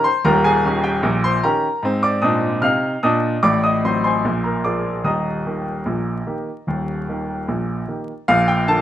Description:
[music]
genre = ragtime piano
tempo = 75 BPM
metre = 2/4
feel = straight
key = Eb major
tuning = A4 = 440 Hz
[part]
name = clear baby grand piano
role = solo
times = 0.0-8.8 s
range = Eb1 to F6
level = -17 LUFS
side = equal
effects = none
[sound]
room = moderate studio reverb, RT60 0.7 s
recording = minimal, uncompressed stereo recording, vinyl crackle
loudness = -17 LUFS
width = side -12 dB against mid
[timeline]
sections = 0.0-8.3 A section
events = none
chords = 0.0 Eb7; 1.8 Ab; 3.4 Adim7; 4.2 Bb7; 5.0 Eb; 8.3 Bb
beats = | 0.25 1.04 | 1.84 2.63 | 3.43 4.24 | 5.04 5.85 | 6.66 7.47 | 8.28

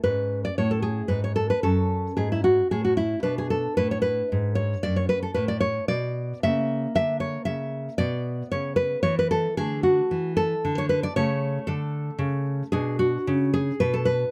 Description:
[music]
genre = classical, baroque-style dance for nylon-string guitar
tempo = 75 BPM (dotted quarters)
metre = 12/8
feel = rubato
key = A major from 9.6 s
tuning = A4 = 441 Hz
[part]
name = nylon-string guitar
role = solo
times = 0.0-14.3 s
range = F#2 to E5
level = -25 LUFS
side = equal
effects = none
[sound]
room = light reverb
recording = close, detailed microphones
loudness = -25 LUFS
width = mono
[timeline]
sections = 0.0-14.3 A section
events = none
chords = 0.0 C#5/G#; 1.6 F#m; 3.2 Bm; 6.4 C#m6; 8.0 Bm; 9.6 D; 11.2 A/C#; 12.7 Bm69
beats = | 0.04 0.84 1.64 2.44 | 3.24 4.05 4.84 5.63 | 6.43 7.22 8.00 8.79 | 9.58 10.38 11.16 11.94 | 12.73 13.55

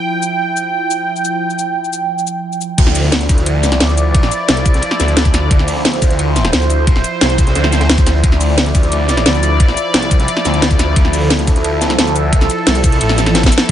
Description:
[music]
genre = dark technical drum and bass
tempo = 176 BPM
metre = 4/4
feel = straight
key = D minor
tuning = A4 = 439 Hz
[part]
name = sweeping resonant pad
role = sustained chords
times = 0.0-13.7 s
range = F3 to G5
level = -18 LUFS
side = right 2 dB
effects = chorus, sidechain pumping
[part]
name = drum and bass drum kit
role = drums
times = 0.2-13.7 s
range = crash cymbal, hi-hat, shaker, snare drum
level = -16 LUFS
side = equal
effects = none
[part]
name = phased detuned saw bass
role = bass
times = 2.8-13.7 s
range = A1 to D2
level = -15 LUFS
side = equal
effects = phaser, overdrive, sidechain pumping
[part]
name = crunchy breakbeat drum kit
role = drums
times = 2.8-13.7 s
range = hi-hat, ride cymbal, snare drum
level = -26 LUFS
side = equal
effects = high-pass filter on cymbals, high-pass filter on hats, high-pass filter on snare, high-pass filter on room
[part]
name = electronic kick drum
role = drums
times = 2.8-13.7 s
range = none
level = -12 LUFS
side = equal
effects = none
[sound]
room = light reverb, studio ambience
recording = nothing above 10.4 kHz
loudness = -11 LUFS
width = side -11 dB against mid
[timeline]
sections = 0.0-2.8 A section; 2.8-13.7 B section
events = drop 2.8-13.7; drum fill 13.3-13.7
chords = 0.0 Dmadd9 (rootless); 2.8 Dmadd9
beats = | 0.05 0.40 0.74 1.08 | 1.42 1.76 2.10 2.44 | 2.78 3.12 3.46 3.80 | 4.14 4.49 4.83 5.17 | 5.51 5.85 6.19 6.53 | 6.87 7.21 7.55 7.89 | 8.24 8.58 8.92 9.26 | 9.60 9.94 10.28 10.62 | 10.96 11.30 11.64 11.99 | 12.33 12.67 13.01 13.35 | 13.69

